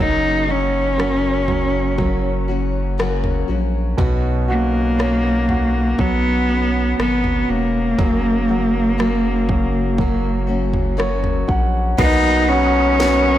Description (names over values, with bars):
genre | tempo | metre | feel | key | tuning
pop ballad | 60 BPM | 4/4 | straight | B major | A4 = 440 Hz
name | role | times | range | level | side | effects
warm cello | melody | 0.0-13.4 s | A#3 to D#4 | -18 LUFS | equal | tape echo
clear grand piano | accompaniment | 0.0-13.4 s | B2 to F#5 | -25 LUFS | right 4 dB | none
picked steel-string acoustic guitar | arpeggios | 0.0-13.4 s | F#2 to F#4 | -26 LUFS | left 6 dB | none
saturated sub bass | bass | 0.0-13.4 s | E1 to B1 | -22 LUFS | equal | none
house drum kit | drums | 1.0-13.2 s | crash cymbal, kick drum, rim click, snare drum, toms | -23 LUFS | equal | soft clipping on snare
mellow tonewheel organ | sustained chords | 12.0-13.4 s | F#5 to D#6 | -24 LUFS | equal | chorus vibrato, fast rotary speaker
room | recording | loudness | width
moderate concert hall reverb, RT60 2.3 s | blown-out, overdriven recording, overdrive | -16 LUFS | side -12 dB against mid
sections
0.0-12.0 A section; 12.0-13.4 B section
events
grand piano fill 10.5-12.0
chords
0.0 F#; 4.0 Bsus2; 8.0 F#; 12.0 Bmaj7